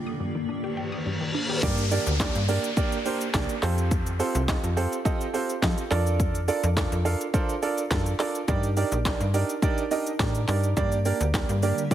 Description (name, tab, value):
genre	dance-pop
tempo	105 BPM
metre	4/4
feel	straight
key	G minor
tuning	A4 = 440 Hz
part	clear concert grand piano	accompaniment	0.0-11.9 s	G2 to Bb5	-28 LUFS	right 4 dB	sidechain pumping
part	granular cloud pad	sustained chords	0.0-1.6, 11.6-11.9 s	G2 to D5	-33 LUFS	left 2 dB	built-in reverb, sidechain pumping
part	resonant blip pluck	arpeggios	0.1-1.6 s	G2 to Eb6	-33 LUFS	left 1 dB	chorus, phaser, sidechain pumping, ping-pong delay
part	reverse cymbal and downlifter	sound effects	0.7-6.2 s	none	-33 LUFS	left 1 dB	none
part	slap-like FM bass	bass	1.6-11.7 s	Bb1 to F3	-26 LUFS	left 1 dB	sidechain pumping
part	house drum kit	drums	1.6-11.9 s	crash cymbal, handclaps, hi-hat, kick drum, shaker, snare drum	-28 LUFS	left 1 dB	overdrive
room	light reverb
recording	heavily compressed radio sound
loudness	-23 LUFS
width	side -11 dB against mid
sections	0.0-1.6 A section; 1.6-11.9 B section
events	reverse cymbal 0.7-1.6; drop 1.6-11.9; grand piano fill 9.9-10.8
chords	0.0 Ebmaj7/G; 1.6 Gm; 3.6 Fadd9; 5.9 Bbmaj7/F; 8.5 Ebmaj7; 10.8 Gm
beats	0.48 1.06 | 1.63 2.20 2.77 3.34 | 3.91 4.49 5.06 5.63 | 6.20 6.77 7.34 7.91 | 8.48 9.06 9.63 10.20 | 10.77 11.34 11.91